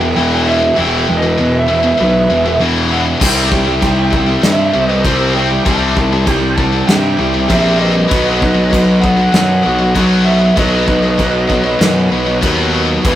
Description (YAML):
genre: heavy metal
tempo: 98 BPM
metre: 4/4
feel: straight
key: unclear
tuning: A4 = 439 Hz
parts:
  - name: bluesy overdriven lead guitar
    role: melody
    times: 0.0-13.2 s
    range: B4 to A5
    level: -18 LUFS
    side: right 2 dB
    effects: distortion
  - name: high-gain lead guitar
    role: second line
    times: 0.0-12.4 s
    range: G4 to F#5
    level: -24 LUFS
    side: left 1 dB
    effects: distortion
  - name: heavy high-gain guitar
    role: riff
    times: 0.0-13.2 s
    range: E2 to C4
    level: -19 LUFS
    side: left 6 dB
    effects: distortion
  - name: heavy high-gain guitar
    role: riff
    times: 0.0-13.2 s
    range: E2 to C4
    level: -22 LUFS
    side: right 5 dB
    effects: distortion
  - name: tight distorted guitar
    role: riff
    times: 0.0-13.2 s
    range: E2 to C4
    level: -20 LUFS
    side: equal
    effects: distortion
  - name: fuzz picked electric bass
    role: bass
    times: 0.0-13.2 s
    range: E1 to G2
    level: -15 LUFS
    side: equal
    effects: overdrive
  - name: modern studio drum kit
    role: drums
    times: 3.2-13.2 s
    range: china cymbal, crash cymbal, kick drum, snare drum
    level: -18 LUFS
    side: equal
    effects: none
room: light reverb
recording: rough rehearsal-room recording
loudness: -10 LUFS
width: side -12 dB against mid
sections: 0.0-13.0 A section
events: none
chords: 0.0 Em; 3.2 C; 8.1 B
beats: 0.16 | 0.77 1.38 1.99 2.60 | 3.21 3.83 4.44 5.05 | 5.66 6.28 6.89 7.50 | 8.12 8.73 9.35 9.96 | 10.58 11.20 11.81 12.43 | 13.05